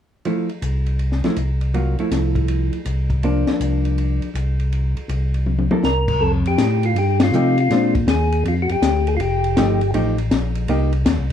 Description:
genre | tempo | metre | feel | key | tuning
soul jazz organ trio | 161 BPM | 4/4 | swing 65% on 8ths | F major, F mixolydian from 6.2 s | A4 = 442 Hz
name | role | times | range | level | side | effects
hollow-body jazz guitar | accompaniment | 0.3-10.9 s | F3 to A4 | -22 LUFS | right 1 dB | none
compact cocktail drum kit | drums | 0.3-11.3 s | crash cymbal, hi-hat, kick drum, ride cymbal, snare drum, toms | -24 LUFS | left 3 dB | none
tonewheel organ | bass | 0.6-11.3 s | F1 to C3 | -19 LUFS | equal | overdrive, slow rotary speaker
percussive tonewheel organ | melody | 5.8-9.9 s | F4 to Bb4 | -20 LUFS | left 1 dB | slow rotary speaker, overdrive
room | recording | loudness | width
light reverb | none | -17 LUFS | side -9 dB against mid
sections
0.2-6.2 A section; 6.2-11.3 B section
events
drum fill 5.5-5.8; band accent 7.1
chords
0.2 Fmaj7/C; 3.2 C9sus4; 4.7 N.C.; 6.2 F9; 7.7 Bb9; 9.2 F9; 10.7 Cm7

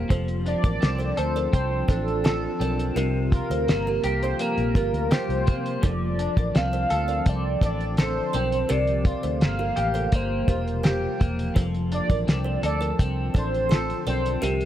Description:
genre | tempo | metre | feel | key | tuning
indie pop, bedroom pop | 84 BPM | 4/4 | straight | F major | A4 = 440 Hz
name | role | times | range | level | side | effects
clean electric guitar | accompaniment | 0.0-14.7 s | C3 to A4 | -29 LUFS | left 1 dB | analog chorus, warbly pitch drift
ethereal airy pad | sustained chords | 0.0-14.7 s | C3 to F4 | -34 LUFS | left 1 dB | ensemble chorus, built-in reverb
vintage muted fingered electric bass | bass | 0.0-14.7 s | E1 to C3 | -28 LUFS | equal | none
kalimba | second line | 0.1-14.7 s | F4 to D5 | -33 LUFS | right 4 dB | lush chorus, slapback echo
cloth-damped thuddy drum kit | drums | 0.1-14.7 s | hi-hat, kick drum, snare drum | -22 LUFS | equal | vintage 12-bit sampler grit
warm velvety synth lead | melody | 0.5-14.4 s | A4 to F5 | -28 LUFS | equal | wide subtle chorus, slapback echo
room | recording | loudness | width
studio reverb | none | -21 LUFS | side -11 dB against mid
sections
0.0-14.7 A section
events
none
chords
0.1 F6; 3.0 C7sus4; 5.8 F6; 8.7 C7sus4; 11.6 F6

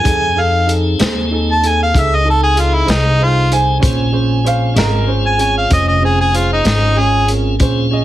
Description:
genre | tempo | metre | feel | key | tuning
slow blues | 64 BPM (dotted quarters) | 12/8 | straight | Bb minor | A4 = 439 Hz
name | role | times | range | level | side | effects
clear harmonica | melody | 0.0-7.3 s | Eb4 to A5 | -15 LUFS | equal | overdrive
warm grand piano | accompaniment | 0.0-8.0 s | Db4 to Eb5 | -21 LUFS | right 5 dB | none
tonewheel organ | sustained chords | 0.0-8.0 s | C4 to A4 | -23 LUFS | left 1 dB | slow rotary speaker
upright bass | bass | 0.1-8.0 s | F1 to F2 | -16 LUFS | left 1 dB | none
crunchy breakbeat drum kit | drums | 0.1-7.7 s | hi-hat, kick drum, snare drum | -18 LUFS | left 1 dB | none
clear upright piano | second line | 3.5-5.1 s | Bb4 to G#5 | -20 LUFS | right 3 dB | none
room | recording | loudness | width
little or no reverb | heavily compressed radio sound | -11 LUFS | side -13 dB against mid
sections
0.0-8.0 A section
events
none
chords
0.0 F7#9; 3.8 Bbm7

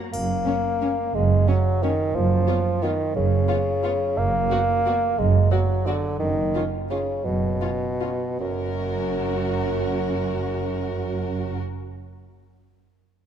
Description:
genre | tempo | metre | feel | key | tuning
classical, orchestral ballroom waltz | 144-192 BPM | 3/4 | rubato | F# major | A4 = 440 Hz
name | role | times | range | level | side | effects
warm chamber cello section | bass | 0.0-11.5 s | F#2 to A#3 | -29 LUFS | right 3 dB | none
warm bassoon | accompaniment | 0.1-11.5 s | F#2 to A#3 | -24 LUFS | equal | none
rich studio double bass section | bass | 0.1-11.5 s | F#1 | -25 LUFS | right 4 dB | none
triangle | percussion | 0.1-0.8 s | none | -41 LUFS | left 3 dB | none
rich chamber violin section | melody | 0.5-11.5 s | A#4 to D5 | -40 LUFS | left 8 dB | none
dark chamber violin section | second line | 0.5-11.5 s | C#4 to F#4 | -32 LUFS | left 2 dB | none
warm studio viola section | accompaniment | 0.5-11.5 s | A#3 to C#4 | -38 LUFS | equal | none
room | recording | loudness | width
moderate concert hall reverb, RT60 2.0 s | dark, warm production | -21 LUFS | side -8 dB against mid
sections
0.1-8.4 A section; 8.4-10.8 B section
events
slowing down 5.7-8.4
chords
0.1 F#; 2.2 C#7/F#; 4.2 Bm/F#; 6.2 C#7(no3)/F#; 8.4 F#

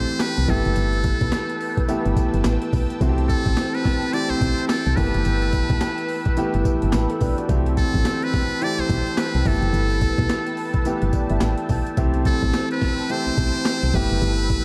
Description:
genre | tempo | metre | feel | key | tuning
R&B, new jack swing | 107 BPM | 4/4 | swing 60% on 16ths | G major | A4 = 436 Hz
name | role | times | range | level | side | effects
trumpet with metal mute | melody | 0.0-14.6 s | A4 to D5 | -30 LUFS | equal | shimmer reverb
warm concert grand piano | accompaniment | 0.0-14.6 s | D3 to B5 | -27 LUFS | equal | shimmer reverb
phased analog pad | sustained chords | 0.0-14.6 s | C4 to E6 | -34 LUFS | equal | phaser, chorus, shimmer reverb
solid FM bass | bass | 0.0-14.6 s | F#1 to C2 | -24 LUFS | equal | none
breakbeat sampler-style drum kit | drums | 0.1-14.6 s | handclaps, hi-hat, kick drum, snare drum, tambourine | -26 LUFS | equal | overdrive
room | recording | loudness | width
light reverb, digital ambience | dark, warm production | -21 LUFS | mono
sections
0.0-14.6 A section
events
grand piano fill 6.7-7.5, 10.9-12.0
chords
0.5 G69; 3.0 C6; 5.0 G69; 7.5 C6; 9.5 G69; 12.0 C6; 13.9 G69

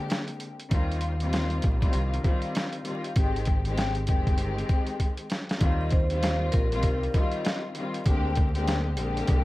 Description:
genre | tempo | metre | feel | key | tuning
hip hop, boom-bap hip-hop | 98 BPM | 4/4 | swing 63% on 16ths | Eb major | A4 = 440 Hz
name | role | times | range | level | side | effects
dark studio string section | accompaniment | 0.0-9.4 s | D3 to G4 | -30 LUFS | left 2 dB | plate reverb
boom bap sampler-style drum kit | drums | 0.1-9.4 s | hi-hat, kick drum, snare drum | -26 LUFS | equal | none
deep dub fingered electric bass | bass | 0.7-9.4 s | F1 to Eb2 | -28 LUFS | equal | none
vibraphone with medium mallets | melody | 5.8-7.6 s | Bb4 to Eb5 | -33 LUFS | equal | plate reverb, analog delay
room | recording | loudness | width
light reverb | vinyl crackle | -24 LUFS | side -18 dB against mid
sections
0.0-5.6 A section; 5.6-9.4 B section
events
break 0.0-3.2; drum fill 5.0-5.6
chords
0.0 Bb13; 0.7 Eb69; 3.2 Abmaj7; 5.6 Eb69; 8.1 Bb13

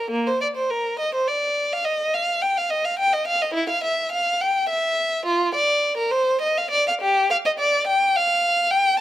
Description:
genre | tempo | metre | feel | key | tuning
classical, baroque-style suite movement for unaccompanied violin | 70 BPM (dotted quarters) | 12/8 | rubato | unclear | A4 = 439 Hz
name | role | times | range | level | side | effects
warm violin | solo | 0.0-9.0 s | Bb3 to G5 | -19 LUFS | equal | none
room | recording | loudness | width
light reverb | close, detailed microphones | -19 LUFS | side -13 dB against mid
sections
0.0-9.0 A section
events
none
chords
none

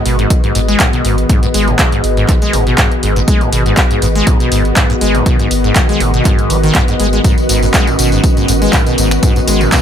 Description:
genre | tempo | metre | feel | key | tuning
acid house | 121 BPM | 4/4 | swing 54% on 16ths | G# minor | A4 = 440 Hz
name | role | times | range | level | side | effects
warbly tape-like pad | sustained chords | 0.0-9.8 s | D#3 to G#4 | -19 LUFS | right 1 dB | chorus, built-in reverb, sidechain pumping
acid bass, saw | riff | 0.0-9.8 s | G#2 to G#3 | -16 LUFS | left 1 dB | lush chorus, sidechain pumping, ping-pong delay
ethereal airy pad | texture | 0.0-9.8 s | F#4 to D#5 | -20 LUFS | left 1 dB | ensemble chorus, built-in reverb, sidechain pumping
warm sub bass | bass | 0.1-9.7 s | G#1 | -16 LUFS | equal | sidechain pumping
punchy analog drum machine | drums | 0.1-9.8 s | finger snaps, handclaps, hi-hat, tambourine | -17 LUFS | equal | none
electronic kick drum | drums | 0.3-9.8 s | none | -13 LUFS | equal | none
room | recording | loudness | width
light reverb, digital ambience | none | -9 LUFS | side -9 dB against mid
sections
0.0-9.8 A section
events
none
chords
0.0 G#m

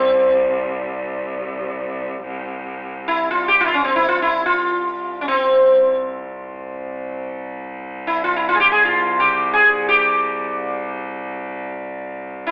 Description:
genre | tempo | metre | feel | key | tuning
Arabic maqam ensemble | free time | none | none | C maqam hijaz | A4 = 441 Hz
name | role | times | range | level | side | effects
sitar | melody | 0.0-12.5 s | C4 to Ab4 | -19 LUFS | equal | none
bright cello | drone | 0.0-12.5 s | C2 | -30 LUFS | equal | none
room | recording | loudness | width
wet stone room reverb, RT60 1.1 s | band playing live in one room, telephone sound | -19 LUFS | mono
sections
0.0-12.5 A section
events
none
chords
none

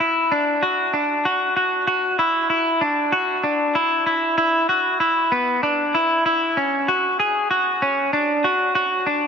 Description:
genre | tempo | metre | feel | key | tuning
dream pop | 96 BPM | 4/4 | straight | unclear | A4 = 440 Hz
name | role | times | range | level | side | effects
semi-hollow electric guitar | solo | 0.0-9.3 s | B3 to G#4 | -17 LUFS | equal | wide subtle chorus, tape echo
room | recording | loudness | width
moderate huge ambient reverb, RT60 7.2 s | none | -17 LUFS | side -6 dB against mid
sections
0.0-4.4 A section; 4.4-9.3 B section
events
none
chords
none

